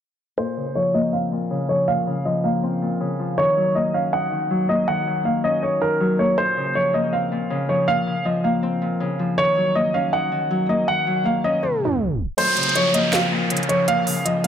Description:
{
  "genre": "hip hop, trap",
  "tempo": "160 BPM",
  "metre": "4/4",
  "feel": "half-time",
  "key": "Bb minor",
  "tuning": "A4 = 441 Hz",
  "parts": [
    { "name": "dark baby grand piano", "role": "melody", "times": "0.4-14.5 s", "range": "Bb4 to Gb5", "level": "-21 LUFS", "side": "right 1 dB", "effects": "low-pass filter" },
    { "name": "Celtic harp", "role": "accompaniment", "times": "0.4-14.5 s", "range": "Bb2 to Eb4", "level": "-23 LUFS", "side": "left 2 dB", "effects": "low-pass filter" },
    { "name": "riser and downlifter", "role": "sound effects", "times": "11.7-14.5 s", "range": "none", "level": "-25 LUFS", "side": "right 1 dB", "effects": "none" },
    { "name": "trap drum kit", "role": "drums", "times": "12.4-14.5 s", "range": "crash cymbal, handclaps, hi-hat, snare drum", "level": "-26 LUFS", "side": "right 1 dB", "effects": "none" }
  ],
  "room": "moderate recital hall reverb, RT60 1.5 s, small room ambience",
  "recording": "tape stop",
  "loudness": "-18 LUFS",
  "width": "side -9 dB against mid",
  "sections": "0.4-12.4 A section; 12.4-14.5 B section",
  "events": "filter sweep 0.4-12.4; tape stop 11.6-12.4; riser 11.7-12.4; kick muted 12.4-14.5",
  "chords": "0.4 Bbmadd9; 3.4 Ebm7; 6.4 Bbmadd9; 9.4 Ebm7; 12.4 Bbmadd9"
}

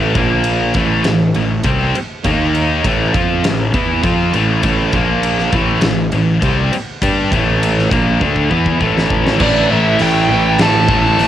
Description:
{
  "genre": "hard rock",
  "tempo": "101 BPM",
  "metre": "4/4",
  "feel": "straight",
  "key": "A minor",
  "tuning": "A4 = 439 Hz",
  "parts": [
    { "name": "cranked stack guitar", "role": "riff", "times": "0.0-11.3 s", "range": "A2 to G4", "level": "-20 LUFS", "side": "right 9 dB", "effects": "overdrive, cassette tape" },
    { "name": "scooped high-gain guitar", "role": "riff", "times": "0.0-11.3 s", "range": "A2 to G4", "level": "-17 LUFS", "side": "left 7 dB", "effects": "distortion, cassette tape" },
    { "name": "fuzz picked electric bass", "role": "bass", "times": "0.0-11.3 s", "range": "A1 to G2", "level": "-17 LUFS", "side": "equal", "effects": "overdrive" },
    { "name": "huge arena drum kit", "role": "drums", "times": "0.2-11.3 s", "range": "crash cymbal, hi-hat, kick drum, ride cymbal, snare drum", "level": "-20 LUFS", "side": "equal", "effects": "cassette tape" },
    { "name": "biting lead guitar", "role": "melody", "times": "9.4-11.3 s", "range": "D5 to A5", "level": "-16 LUFS", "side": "right 1 dB", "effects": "overdrive, cassette tape" },
    { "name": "octave-fuzz lead guitar", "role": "second line", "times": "9.4-11.3 s", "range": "D4 to A4", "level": "-22 LUFS", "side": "right 8 dB", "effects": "distortion, cassette tape" },
    { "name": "crunchy overdriven guitar", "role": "riff", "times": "9.4-11.3 s", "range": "A2 to A3", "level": "-19 LUFS", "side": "right 1 dB", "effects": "cassette tape" }
  ],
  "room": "light reverb",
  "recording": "home recording on cassette",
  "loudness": "-12 LUFS",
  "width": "side -11 dB against mid",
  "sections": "0.0-9.4 A section; 9.4-11.3 B section",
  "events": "drum fill 8.2-9.4",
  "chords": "0.2 Bb5; 0.8 Am; 2.3 D#5; 2.9 Am; 4.9 Bb5; 5.5 Am; 9.4 A5"
}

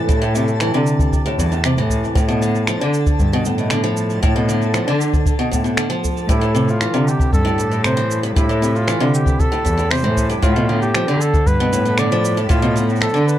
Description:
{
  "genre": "folktronica",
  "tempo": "116 BPM",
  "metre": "4/4",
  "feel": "straight",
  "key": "A minor",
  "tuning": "A4 = 439 Hz",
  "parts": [
    { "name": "picked acoustic archtop guitar", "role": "arpeggios", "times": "0.0-13.4 s", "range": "G2 to F3", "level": "-20 LUFS", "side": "equal", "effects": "tape echo" },
    { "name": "warm cello", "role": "bass", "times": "0.0-13.2 s", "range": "E2 to D3", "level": "-19 LUFS", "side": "equal", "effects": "none" },
    { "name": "twinkling granular texture", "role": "texture", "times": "0.0-13.4 s", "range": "A4 to B5", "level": "-31 LUFS", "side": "right 1 dB", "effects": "built-in reverb" },
    { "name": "electronic cabasa and finger snaps", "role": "drums", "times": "0.1-13.4 s", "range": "none", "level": "-24 LUFS", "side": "right 1 dB", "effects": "none" },
    { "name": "kick drum", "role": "drums", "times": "0.1-12.6 s", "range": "none", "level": "-18 LUFS", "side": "equal", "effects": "none" },
    { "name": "clear flugelhorn", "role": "melody", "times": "6.3-13.4 s", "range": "E4 to D5", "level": "-22 LUFS", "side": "equal", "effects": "tape echo" }
  ],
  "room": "little or no reverb",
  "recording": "dry, close 1970s-style studio recording",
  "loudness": "-15 LUFS",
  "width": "side -12 dB against mid",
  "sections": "0.0-13.4 A section",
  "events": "none",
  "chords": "0.0 Am; 2.2 Bm7b5; 6.3 Am7; 10.4 Bm7b5"
}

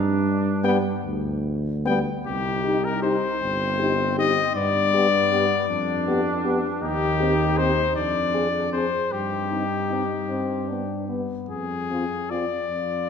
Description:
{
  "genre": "classical, brass quintet",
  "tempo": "52 BPM (dotted quarters)",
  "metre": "6/8",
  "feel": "uneven beats, rubato",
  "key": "C minor",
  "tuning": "A4 = 441 Hz",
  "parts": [
    { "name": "warm flugelhorn", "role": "second line", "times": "0.0-13.1 s", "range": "B3 to F4", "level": "-32 LUFS", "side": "right 4 dB", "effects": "none" },
    { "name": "mellow tuba", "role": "bass", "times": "0.0-13.1 s", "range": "G1 to G2", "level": "-26 LUFS", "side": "right 1 dB", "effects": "none" },
    { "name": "bright trumpet", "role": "melody", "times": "0.6-13.1 s", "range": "G4 to G5", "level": "-24 LUFS", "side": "left 6 dB", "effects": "none" },
    { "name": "warm French horn", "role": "accompaniment", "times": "0.6-12.4 s", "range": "B3 to Ab4", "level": "-29 LUFS", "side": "left 4 dB", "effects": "none" },
    { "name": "warm euphonium", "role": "accompaniment", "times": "0.6-12.4 s", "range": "G3 to Eb4", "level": "-32 LUFS", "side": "right 1 dB", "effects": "none" }
  ],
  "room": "wet concert hall reverb, RT60 2.0 s",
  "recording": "minimal, uncompressed stereo recording",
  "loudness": "-21 LUFS",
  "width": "side -7 dB against mid",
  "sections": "0.0-2.3 A section; 2.3-13.1 B section",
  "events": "none",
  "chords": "0.0 G; 2.3 Cm; 4.6 G; 5.7 G7/F; 6.8 Cm/Eb; 8.0 Dm7b5/F; 9.1 Cm/G; 10.3 G; 11.5 Fm"
}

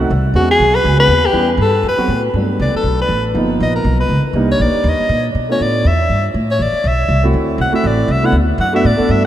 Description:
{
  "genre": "jazz, small-group swing and bop",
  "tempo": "240 BPM",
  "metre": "4/4",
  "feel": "swing 58% on 8ths",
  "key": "G major",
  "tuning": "A4 = 443 Hz",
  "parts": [
    { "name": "warm concert grand piano", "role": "accompaniment", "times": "0.0-9.3 s", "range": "F3 to A4", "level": "-19 LUFS", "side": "right 2 dB", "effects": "none" },
    { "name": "upright bass", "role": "bass", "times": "0.0-9.3 s", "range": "G1 to B2", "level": "-16 LUFS", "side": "equal", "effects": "none" },
    { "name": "clear soprano saxophone", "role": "melody", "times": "0.4-9.2 s", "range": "F#4 to F#5", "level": "-16 LUFS", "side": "left 1 dB", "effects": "none" }
  ],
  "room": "wet cathedral reverb, RT60 6.3 s",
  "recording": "in a vast, echoing space",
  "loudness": "-12 LUFS",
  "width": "side -12 dB against mid",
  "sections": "0.0-2.4 A section; 2.4-9.3 B section",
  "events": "soprano saxophone solo 2.4-9.3",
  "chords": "0.4 E69; 1.4 A9; 1.9 F#madd11; 2.4 Gmaj9; 3.4 G7alt; 4.3 Cm9; 5.3 Bm7b5; 5.8 Em; 6.3 Amadd9; 7.3 D7; 8.3 Gmaj9"
}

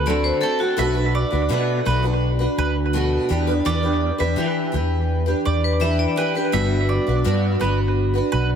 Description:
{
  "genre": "acoustic pop",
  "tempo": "84 BPM",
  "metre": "4/4",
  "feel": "straight",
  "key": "G major",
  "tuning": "A4 = 440 Hz",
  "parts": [
    { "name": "picked steel-string acoustic guitar", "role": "accompaniment", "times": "0.0-8.6 s", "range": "B2 to B4", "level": "-22 LUFS", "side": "equal", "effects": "double-tracked left and right, tape echo" },
    { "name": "mandolin", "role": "arpeggios", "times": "0.0-8.5 s", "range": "A4 to E5", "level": "-27 LUFS", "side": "right 5 dB", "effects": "tape echo" },
    { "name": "fretless electric bass", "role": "bass", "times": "0.0-8.6 s", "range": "G1 to E3", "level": "-21 LUFS", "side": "equal", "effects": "ensemble chorus" },
    { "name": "vibraphone with hard mallets", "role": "second line", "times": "0.1-0.9, 5.6-6.7 s", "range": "F#4 to E5", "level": "-25 LUFS", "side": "left 4 dB", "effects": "tape echo" }
  ],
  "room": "light reverb",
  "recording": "echo-heavy mix",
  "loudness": "-18 LUFS",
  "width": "side -8 dB against mid",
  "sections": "0.0-8.6 A section",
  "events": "none",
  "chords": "0.0 D7; 0.8 Bm7; 3.3 Em7; 6.5 Gmaj7"
}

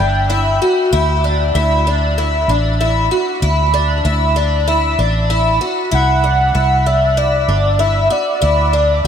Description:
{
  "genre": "dream pop",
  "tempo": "96 BPM",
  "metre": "4/4",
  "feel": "straight",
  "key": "unclear",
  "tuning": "A4 = 440 Hz",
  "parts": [
    { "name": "warm velvety synth lead", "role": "melody", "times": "0.0-0.6, 5.9-9.1 s", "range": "D5 to G5", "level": "-17 LUFS", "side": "equal", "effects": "chorus, ping-pong delay" },
    { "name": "picked twelve-string acoustic guitar", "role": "arpeggios", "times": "0.0-9.1 s", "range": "D4 to F#4", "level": "-16 LUFS", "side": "left 1 dB", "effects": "analog chorus, ping-pong delay" },
    { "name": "vintage muted fingered electric bass", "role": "bass", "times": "0.0-9.1 s", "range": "G1 to D2", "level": "-16 LUFS", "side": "right 1 dB", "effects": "none" }
  ],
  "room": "moderate shimmer reverb, RT60 5.2 s",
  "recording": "none",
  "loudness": "-12 LUFS",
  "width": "side -8 dB against mid",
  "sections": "0.0-9.1 A section",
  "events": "none",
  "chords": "0.0 C (rootless); 0.9 D5; 5.9 C; 8.4 N.C."
}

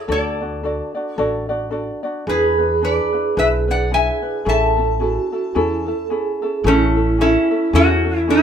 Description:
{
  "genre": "Hawaiian",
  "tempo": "110 BPM",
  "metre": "4/4",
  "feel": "swing 58% on 8ths",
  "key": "A major",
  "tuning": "A4 = 442 Hz",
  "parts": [
    { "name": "metal-body resonator slide guitar", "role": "melody", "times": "0.0-8.4 s", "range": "A3 to A5", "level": "-19 LUFS", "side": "left 1 dB", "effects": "none" },
    { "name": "ukulele", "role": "accompaniment", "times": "0.0-8.4 s", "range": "C#4 to D5", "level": "-23 LUFS", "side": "left 2 dB", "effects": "none" },
    { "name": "upright bass", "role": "bass", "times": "0.1-8.4 s", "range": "A1 to E2", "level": "-22 LUFS", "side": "equal", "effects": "none" },
    { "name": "vibraphone with soft mallets", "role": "second line", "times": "2.3-8.4 s", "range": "E4 to A4", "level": "-20 LUFS", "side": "right 4 dB", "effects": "none" }
  ],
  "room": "light reverb",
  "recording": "none",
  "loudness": "-16 LUFS",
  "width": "side -8 dB against mid",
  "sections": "0.0-6.6 A section; 6.6-8.4 A section",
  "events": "break 6.1-6.6",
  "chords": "0.1 D; 2.3 E7; 4.5 Amaj7"
}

